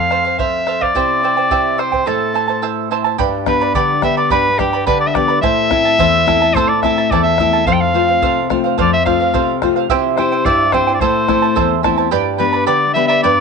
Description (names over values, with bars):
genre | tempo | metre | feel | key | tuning
andean folk, Andean ensemble | 107 BPM | 2/4 | straight | unclear | A4 = 440 Hz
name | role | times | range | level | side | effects
breathy soprano saxophone | melody | 0.0-13.4 s | G4 to G5 | -16 LUFS | left 1 dB | none
charango | accompaniment | 0.0-13.4 s | E4 to B5 | -18 LUFS | right 14 dB | none
nylon-string guitar | accompaniment | 0.0-13.4 s | E2 to F4 | -19 LUFS | left 12 dB | none
bombo | percussion | 0.1-12.0 s | none | -24 LUFS | equal | none
room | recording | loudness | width
light reverb | 1960s-style stereo with parts hard left and right, nothing above 10.4 kHz | -12 LUFS | side -5 dB against mid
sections
0.0-3.2 A section; 3.2-12.1 B section; 12.1-13.4 B section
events
break 2.1-3.2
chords
0.0 F; 0.9 C; 2.1 Am; 3.2 G; 5.4 Am; 7.7 F; 9.9 C; 11.0 Am; 12.1 G